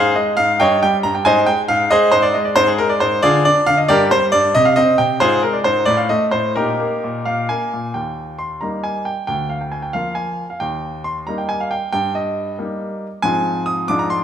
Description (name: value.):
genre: classical-period piano sonatina.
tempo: 91 BPM (dotted quarters).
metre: 6/8.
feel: straight.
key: Eb major.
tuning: A4 = 440 Hz.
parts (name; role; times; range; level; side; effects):
clear baby grand piano; solo; 0.0-14.2 s; D2 to Eb6; -15 LUFS; equal; none.
room: wet recital hall reverb, RT60 1.6 s.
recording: none.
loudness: -15 LUFS.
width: side -9 dB against mid.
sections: 0.0-7.9 A section; 7.9-14.2 B section.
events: none.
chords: 0.0 Ab; 0.6 Eb7/G; 1.3 Ab; 2.6 N.C.; 3.2 Ddim; 3.9 Gm; 4.5 N.C.; 5.2 Fm/Ab; 5.9 N.C.; 6.6 Eb/Bb; 7.9 Eb; 9.3 Bb/D; 10.6 Eb; 11.9 Eb/G; 13.2 Fm/Ab.